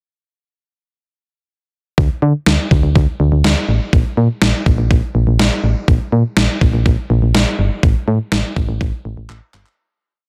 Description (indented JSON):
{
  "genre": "synth-pop",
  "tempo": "123 BPM",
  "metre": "4/4",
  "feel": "straight",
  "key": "unclear",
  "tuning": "A4 = 440 Hz",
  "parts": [
    { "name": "solid FM bass", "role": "bass", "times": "2.0-9.6 s", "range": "G1 to D3", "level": "-17 LUFS", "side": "equal", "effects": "none" },
    { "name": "detuned 8-bit digital drum machine", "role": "drums", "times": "2.0-9.8 s", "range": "handclaps, kick drum, snare drum", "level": "-17 LUFS", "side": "equal", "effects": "none" }
  ],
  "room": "light reverb",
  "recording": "dense, heavily limited modern master",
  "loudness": "-15 LUFS",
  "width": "mono",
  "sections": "2.0-9.8 verse",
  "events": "fade-out 7.8-9.8; drum fill 9.3-9.8",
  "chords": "none"
}